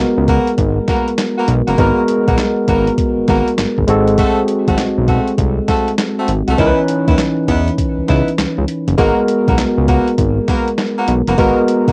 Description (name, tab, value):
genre	R&B, new jack swing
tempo	100 BPM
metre	4/4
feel	swing 65% on 16ths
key	G# minor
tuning	A4 = 438 Hz
part	barky tine electric piano	accompaniment	0.0-11.9 s	E3 to B4	-18 LUFS	equal	subtle chorus, cassette tape
part	warm horn section	stabs	0.0-11.9 s	A3 to B4	-22 LUFS	equal	cassette tape
part	fat analog bass	bass	0.0-11.9 s	F#1 to E2	-19 LUFS	equal	none
part	boom bap sampler-style drum kit	drums	0.3-11.9 s	handclaps, hi-hat, kick drum, snare drum	-21 LUFS	equal	none
room	light reverb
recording	home recording on cassette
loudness	-15 LUFS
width	mono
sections	0.0-11.9 A section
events	none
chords	0.0 G#m9; 3.9 G#7b9; 6.6 C#m9; 9.0 G#m9